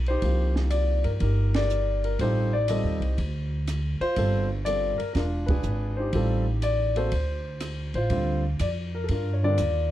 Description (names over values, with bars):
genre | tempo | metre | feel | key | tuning
jazz piano trio | 122 BPM | 4/4 | swing 68% on 8ths | G minor | A4 = 440 Hz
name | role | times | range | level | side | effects
upright bass | bass | 0.0-9.9 s | E1 to G2 | -26 LUFS | equal | none
warm grand piano | melody | 0.1-9.9 s | D3 to Eb5 | -27 LUFS | left 1 dB | plate reverb
compact cocktail drum kit | drums | 0.1-9.7 s | hi-hat, kick drum, ride cymbal, rim click, snare drum | -34 LUFS | right 1 dB | none
room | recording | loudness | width
little or no reverb | dark, warm production | -23 LUFS | side -13 dB against mid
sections
0.0-8.1 A section; 8.1-9.9 A section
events
band accent 1.4, 5.4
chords
0.2 Cm7; 2.2 Am7b5; 3.2 D7(no3); 4.2 G9sus4; 5.1 E7b9; 6.1 Am7b5; 7.1 D7(no3); 8.1 Gm7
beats
| 0.22 0.71 1.20 1.70 | 2.19 2.68 3.18 3.67 | 4.16 4.66 5.15 5.64 | 6.13 6.63 7.12 7.61 | 8.11 8.60 9.10 9.59